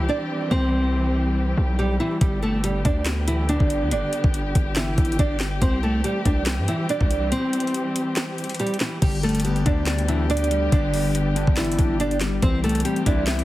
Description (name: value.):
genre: hip hop, trap.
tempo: 141 BPM.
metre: 4/4.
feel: half-time.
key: G major.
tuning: A4 = 440 Hz.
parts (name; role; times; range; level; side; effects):
nylon-string guitar; melody; 0.0-13.2 s; E3 to D5; -25 LUFS; right 1 dB; tape echo.
dark chamber string section; sustained chords; 0.0-13.4 s; D3 to G4; -30 LUFS; left 1 dB; none.
distorted 808-style bass; bass; 0.0-13.4 s; G1 to G2; -24 LUFS; equal; distortion.
trap drum kit; drums; 2.2-13.4 s; crash cymbal, handclaps, hi-hat, kick drum, snare drum; -24 LUFS; equal; none.
mellow electric guitar; accompaniment; 9.0-13.4 s; D3 to E5; -26 LUFS; left 4 dB; none.
room: little or no reverb.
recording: heavily compressed radio sound.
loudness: -20 LUFS.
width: side -16 dB against mid.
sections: 0.0-9.0 A section; 9.0-13.4 B section.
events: break 7.3-9.0.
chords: 0.0 C; 2.2 G; 5.6 C; 9.0 G; 12.4 C.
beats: 0.09 | 0.51 0.94 1.36 1.79 | 2.21 2.64 3.06 3.49 | 3.91 4.34 4.76 5.19 | 5.62 6.04 6.47 6.89 | 7.32 7.74 8.17 8.60 | 9.02 9.45 9.87 10.30 | 10.72 11.15 11.57 12.00 | 12.43 12.85 13.28.